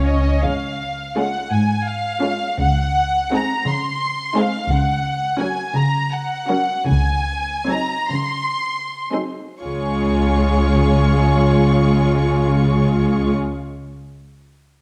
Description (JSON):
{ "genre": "classical", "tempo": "37-58 BPM (dotted quarters)", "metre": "6/8", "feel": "rubato", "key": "Db major", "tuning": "A4 = 444 Hz", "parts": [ { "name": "warm studio violin section", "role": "melody", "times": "0.0-13.3 s", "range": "Eb5 to Db6", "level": "-25 LUFS", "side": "equal", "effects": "none" }, { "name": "warm studio violin section", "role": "second line", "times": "0.0-13.3 s", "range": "Eb4 to Db5", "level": "-29 LUFS", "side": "equal", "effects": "none" }, { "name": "warm studio viola section", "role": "accompaniment", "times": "0.0-13.3 s", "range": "Gb3 to F4", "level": "-23 LUFS", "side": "equal", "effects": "none" }, { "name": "dark studio double bass section", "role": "bass", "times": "0.0-13.3 s", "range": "Db2", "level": "-23 LUFS", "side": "equal", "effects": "none" }, { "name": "warm studio cello section", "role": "bass", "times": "0.4-13.3 s", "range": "Ab2 to Db3", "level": "-24 LUFS", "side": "equal", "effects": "none" } ], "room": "moderate scoring stage reverb, RT60 1.4 s", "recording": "dark, warm production", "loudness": "-19 LUFS", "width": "mono", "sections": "0.4-9.6 A section; 9.6-14.8 B section", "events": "slowing down 3.7-9.6", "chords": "0.4 Db; 2.6 Ab7/Db; 4.7 Gb/Db; 6.9 Ab7/Db; 9.6 Db", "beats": "| 0.43 1.52 | 2.59 3.67 | 4.70 5.75 | 6.87 8.13 | 9.62 11.05 | 12.47" }